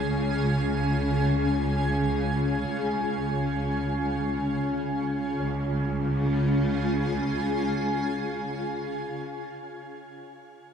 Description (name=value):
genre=ambient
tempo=free time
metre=none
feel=none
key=Db major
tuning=A4 = 444 Hz
part: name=granular cloud pad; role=sustained chords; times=0.0-9.2 s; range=Db3 to Ab5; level=-27 LUFS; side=equal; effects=built-in reverb, shimmer reverb
part: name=warm studio cello section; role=bass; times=0.0-8.6 s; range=Db2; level=-31 LUFS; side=equal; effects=none
part: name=analog drone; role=drone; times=0.0-8.5 s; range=Db3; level=-31 LUFS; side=equal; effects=chorus
part: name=soft round pluck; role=arpeggios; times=5.4-8.5 s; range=Db5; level=-53 LUFS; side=equal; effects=none
room=wet concert hall reverb, RT60 2.0 s, digital ambience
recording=cassette tape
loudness=-24 LUFS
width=side -7 dB against mid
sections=0.0-5.4 A section; 5.4-9.8 B section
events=none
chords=0.0 Db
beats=free time